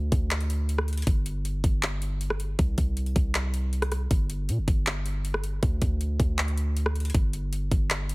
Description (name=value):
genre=hip hop, trap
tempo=158 BPM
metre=4/4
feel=half-time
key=unclear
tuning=A4 = 439 Hz
part: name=hard-hitting 808-style bass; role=bass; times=0.0-8.1 s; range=G1 to Bb2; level=-27 LUFS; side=equal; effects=none
part: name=trap drum kit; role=drums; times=0.1-8.1 s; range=handclaps, hi-hat, kick drum, rim click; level=-27 LUFS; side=equal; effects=none
room=little or no reverb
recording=heavily compressed radio sound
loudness=-24 LUFS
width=side -24 dB against mid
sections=0.0-8.1 A section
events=none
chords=none